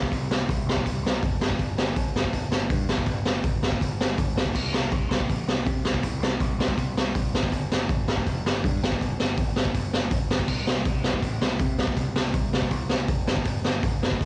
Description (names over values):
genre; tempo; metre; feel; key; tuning
punk rock; 162 BPM; 4/4; straight; unclear; A4 = 440 Hz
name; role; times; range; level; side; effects
growling picked electric bass; bass; 0.0-14.3 s; F1 to C3; -30 LUFS; equal; overdrive
raw garage drum kit; drums; 0.0-14.3 s; crash cymbal, hi-hat, kick drum, snare drum; -23 LUFS; equal; cassette tape
room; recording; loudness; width
little or no reverb; home recording on cassette; -22 LUFS; side -33 dB against mid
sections
0.0-14.3 A section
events
none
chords
none